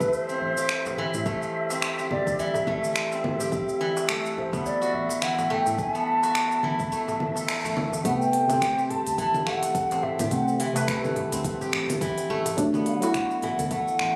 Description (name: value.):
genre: organic downtempo.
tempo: 106 BPM.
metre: 4/4.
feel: swing 57% on 16ths.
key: A dorian.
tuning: A4 = 441 Hz.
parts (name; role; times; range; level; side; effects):
breathy mellow bansuri; melody; 0.0-14.2 s; B4 to A5; -30 LUFS; equal; digital delay.
steel-string zither; arpeggios; 0.0-14.2 s; E3 to A4; -32 LUFS; equal; tape echo.
warm sub bass; bass; 0.0-14.1 s; G1 to A2; -38 LUFS; equal; tube saturation, sidechain pumping.
electronic kick drum; drums; 0.0-13.8 s; none; -36 LUFS; equal; none.
organic electronic drum kit; drums; 0.0-14.1 s; cabasa, congas, finger snaps, hi-hat; -33 LUFS; equal; overdrive.
darbuka; percussion; 0.0-13.6 s; none; -42 LUFS; equal; none.
wind-like tuned noise texture; texture; 0.0-8.1 s; E5; -39 LUFS; equal; built-in reverb.
deep mellow chord stab; accompaniment; 8.0-14.2 s; C3 to B4; -31 LUFS; equal; chorus, sidechain pumping, tape echo.
room: moderate lush hall reverb, RT60 1.7 s, digital ambience.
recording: recorded on a phone in the room, studio ambience.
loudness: -26 LUFS.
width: mono.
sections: 0.0-8.1 A section; 8.1-14.2 B section.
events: break 6.9-8.1; band accent 7.5.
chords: 0.0 Am; 3.5 B7(no3)/A; 8.1 Amadd9; 12.6 Bm7/A.